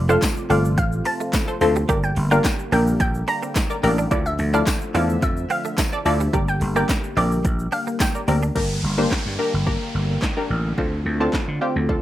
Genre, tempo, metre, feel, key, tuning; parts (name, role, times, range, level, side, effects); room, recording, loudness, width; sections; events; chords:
dance-pop; 108 BPM; 4/4; straight; G dorian; A4 = 438 Hz
sweeping resonant pad; sustained chords; 0.0-12.0 s; C3 to E5; -30 LUFS; left 1 dB; lush chorus, sidechain pumping
vintage slap bass; bass; 0.0-12.0 s; F1 to D3; -22 LUFS; equal; sidechain pumping
analog pluck; melody; 0.1-8.4 s; D5 to Bb5; -26 LUFS; right 1 dB; chorus, plate reverb
punchy chord stab; accompaniment; 0.1-12.0 s; A3 to D5; -23 LUFS; left 1 dB; chorus, sidechain pumping, plate reverb
direct-recorded clean electric guitar; riff; 0.1-8.5 s; G3 to G4; -29 LUFS; right 5 dB; ensemble chorus
deep house drum kit; drums; 0.1-12.0 s; crash cymbal, handclaps, hi-hat, kick drum, shaker, snare drum; -24 LUFS; equal; overdrive
tambourine; percussion; 0.2-8.1 s; -32 LUFS; left 6 dB
downlifter; sound effects; 8.6-12.0 s; -32 LUFS; equal
moderate studio reverb, RT60 0.5 s; rough home demo mix; -18 LUFS; side -13 dB against mid
0.0-8.6 A section; 8.6-12.0 B section
drop 0.0-8.6
0.0 F; 1.9 Gm; 4.1 Dmadd9; 6.3 Gm; 10.8 Dm7